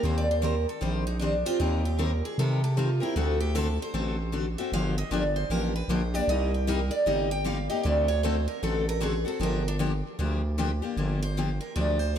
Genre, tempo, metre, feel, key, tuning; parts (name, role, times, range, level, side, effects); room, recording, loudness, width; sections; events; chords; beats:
acoustic string swing (jazz manouche); 154 BPM; 4/4; swing 62% on 8ths; G minor; A4 = 444 Hz
picked steel-string acoustic guitar; melody; 0.0-12.2 s; D4 to G5; -30 LUFS; right 3 dB; tape echo
picked steel-string acoustic guitar; accompaniment; 0.0-12.2 s; C3 to C5; -30 LUFS; left 3 dB; lush chorus
growling FM bass; bass; 0.0-12.2 s; G1 to C3; -28 LUFS; equal
moderate plate reverb, RT60 2.9 s; dreamy mix soaked in reverb; -25 LUFS; side -9 dB against mid
0.0-11.0 A section; 11.0-12.2 B section
steel-string acoustic guitar solo 0.0-11.0
0.0 Eb6; 1.6 Cm7/Eb; 3.2 D7; 4.7 Gm7; 6.3 Cm7; 7.8 D7; 9.4 Gm7
| 0.04 0.43 0.82 1.21 | 1.60 1.99 2.38 2.77 | 3.16 3.55 3.94 4.33 | 4.72 5.12 5.50 5.89 | 6.29 6.68 7.07 7.46 | 7.85 8.24 8.63 9.02 | 9.41 9.80 10.19 10.58 | 10.98 11.37 11.76 12.15